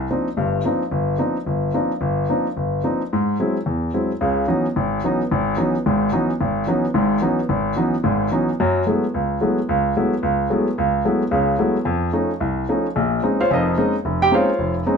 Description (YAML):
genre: jazz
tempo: 219 BPM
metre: 4/4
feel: swing 59% on 8ths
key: C# minor from 4.2 s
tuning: A4 = 439 Hz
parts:
  - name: warm baby grand piano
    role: solo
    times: 0.0-15.0 s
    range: F1 to G5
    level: -18 LUFS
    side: equal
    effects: none
room: moderate studio reverb, RT60 0.6 s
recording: none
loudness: -18 LUFS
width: side -6 dB against mid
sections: 0.0-4.2 A section; 4.2-12.9 B section; 12.9-15.0 C section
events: none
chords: 0.0 Cm11; 3.1 Abaug7; 4.2 C#m11; 8.6 F#m11; 11.9 F7b13; 12.9 Bbm11